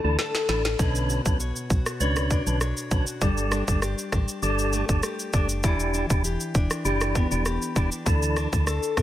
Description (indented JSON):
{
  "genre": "dancehall",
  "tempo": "99 BPM",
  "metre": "4/4",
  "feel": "straight",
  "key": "B minor",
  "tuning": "A4 = 440 Hz",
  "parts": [
    { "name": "percussive tonewheel organ", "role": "accompaniment", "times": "0.0-8.7 s", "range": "D3 to B4", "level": "-29 LUFS", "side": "right 1 dB", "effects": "overdrive, chorus vibrato, fast rotary speaker" },
    { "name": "fingerpicked steel-string acoustic guitar", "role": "arpeggios", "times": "0.0-9.0 s", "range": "B2 to C#5", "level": "-30 LUFS", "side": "left 4 dB", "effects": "none" },
    { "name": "organ-like FM bass", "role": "bass", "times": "0.0-9.0 s", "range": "E1 to E2", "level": "-27 LUFS", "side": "equal", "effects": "none" },
    { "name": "island pop drum kit", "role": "drums", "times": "0.2-9.0 s", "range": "kick drum, rim click, shaker, snare drum", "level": "-26 LUFS", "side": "equal", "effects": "none" }
  ],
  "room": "digital ambience",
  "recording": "none",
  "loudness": "-22 LUFS",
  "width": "side -13 dB against mid",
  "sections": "0.0-9.0 A section",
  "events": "break 0.0-0.8; drum fill 0.2-0.8",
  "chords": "0.0 Dsus2; 0.8 Bmadd9; 3.2 Gsus2; 5.6 Em7; 8.1 Dsus2"
}